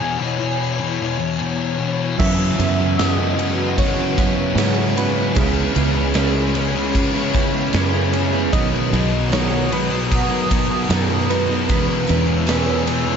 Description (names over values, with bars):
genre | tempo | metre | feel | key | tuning
rock, shoegaze and dream pop | 76 BPM | 4/4 | straight | B major | A4 = 439 Hz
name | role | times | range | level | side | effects
soft struck synth lead | melody | 0.0-13.2 s | G#4 to G#5 | -27 LUFS | equal | chorus, phaser, tape echo
icy glass pad | sustained chords | 0.0-13.2 s | B4 to E6 | -28 LUFS | equal | chorus, built-in reverb
thick fuzz guitar | riff | 0.0-13.2 s | E2 to C#4 | -22 LUFS | left 7 dB | distortion, ensemble chorus
picked plugged-in twelve-string acoustic guitar | arpeggios | 2.2-13.2 s | E3 to G#4 | -30 LUFS | right 9 dB | wide subtle chorus, tape echo
cranked stack guitar | riff | 2.2-13.2 s | E2 to C#4 | -28 LUFS | right 1 dB | overdrive, ensemble chorus
mellow electric guitar | riff | 2.2-13.1 s | E2 to B4 | -24 LUFS | right 12 dB | reverse reverb
fingered electric bass | bass | 2.2-13.2 s | B1 to G#2 | -22 LUFS | right 1 dB | none
huge arena drum kit | drums | 2.2-13.1 s | crash cymbal, kick drum, ride cymbal, snare drum | -22 LUFS | right 1 dB | none
tambourine | percussion | 2.2-13.2 s | none | -37 LUFS | right 14 dB | none
room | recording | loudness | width
moderate plate reverb, RT60 2.8 s | dreamy mix soaked in reverb, nothing above 7.7 kHz | -16 LUFS | side -7 dB against mid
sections
0.0-13.2 A section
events
none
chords
0.0 E6; 2.2 F#7sus4; 5.4 C#m7; 8.5 Bmaj7; 11.7 E6